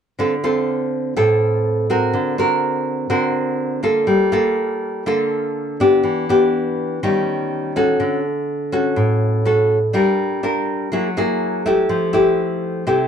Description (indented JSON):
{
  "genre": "bossa nova",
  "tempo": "123 BPM",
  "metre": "4/4",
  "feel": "straight",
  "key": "D minor",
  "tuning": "A4 = 436 Hz",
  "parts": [
    { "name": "nylon-string guitar", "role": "solo", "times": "0.2-13.1 s", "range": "A2 to Bb4", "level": "-16 LUFS", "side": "equal", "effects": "none" }
  ],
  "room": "moderate studio reverb, RT60 0.5 s",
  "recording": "dark, warm production",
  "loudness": "-16 LUFS",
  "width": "side -8 dB against mid",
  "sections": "0.2-13.1 A section",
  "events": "none",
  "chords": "0.2 Dm7; 2.1 D7alt; 4.1 Gm9; 6.0 Em7; 7.0 Eb9; 8.0 Dmaj7; 9.9 Gm7; 10.9 F#9; 11.9 Fmaj9",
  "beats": "| 0.18 0.67 1.16 1.65 | 2.14 2.63 3.11 3.60 | 4.09 4.58 5.07 5.55 | 6.04 6.53 7.02 7.51 | 8.00 8.48 8.97 9.46 | 9.95 10.44 10.92 11.41 | 11.90 12.39 12.88"
}